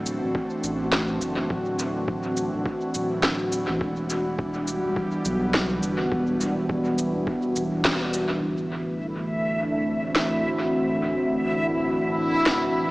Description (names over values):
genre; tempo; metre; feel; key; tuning
ambient dub; 104 BPM; 4/4; swing 60% on 16ths; unclear; A4 = 440 Hz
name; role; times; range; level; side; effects
airy breathy pad; sustained chords; 0.0-12.9 s; E3 to F#4; -25 LUFS; equal; chorus
soft dub sub bass; bass; 0.0-12.9 s; D1 to B1; -33 LUFS; equal; none
electronic shaker and snare drum; drums; 0.1-12.6 s; none; -26 LUFS; equal; dub echo
electronic kick drum; drums; 0.3-8.0 s; none; -31 LUFS; equal; none
backwards swelling texture; texture; 9.0-12.9 s; E4 to E5; -26 LUFS; equal; built-in reverb
room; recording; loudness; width
moderate echo chamber reverb, RT60 1.9 s; small speaker sound; -22 LUFS; side -20 dB against mid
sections
0.0-8.4 A section; 8.4-12.9 B section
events
band accent 7.8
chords
0.0 D9; 3.8 Em9; 8.4 D9